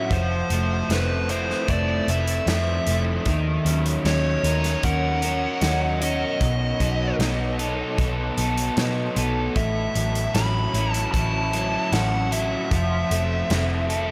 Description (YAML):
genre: rock, shoegaze and dream pop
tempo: 76 BPM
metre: 4/4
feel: straight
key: unclear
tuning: A4 = 438 Hz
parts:
  - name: fuzz lead guitar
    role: melody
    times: 0.0-14.1 s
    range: B4 to B5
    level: -30 LUFS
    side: equal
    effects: distortion, tape echo
  - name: overdriven semi-hollow guitar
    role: riff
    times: 0.0-14.1 s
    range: A2 to A#4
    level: -30 LUFS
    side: equal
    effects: reverse reverb
  - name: raw garage guitar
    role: riff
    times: 0.0-14.1 s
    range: A2 to A#4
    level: -32 LUFS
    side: equal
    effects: overdrive, subtle chorus
  - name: vintage muted picked electric bass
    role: bass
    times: 0.1-14.1 s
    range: F1 to B2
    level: -27 LUFS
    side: equal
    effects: none
  - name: loose indie drum kit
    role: drums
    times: 0.1-14.1 s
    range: hi-hat, kick drum, snare drum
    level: -30 LUFS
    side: equal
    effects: none
room: wet huge ambient reverb, RT60 8.5 s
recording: dreamy mix soaked in reverb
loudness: -23 LUFS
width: mono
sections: 0.0-14.1 A section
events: none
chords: 0.1 Fmaj7; 3.3 D#m7; 6.4 B7; 9.6 A6; 12.7 Fmaj7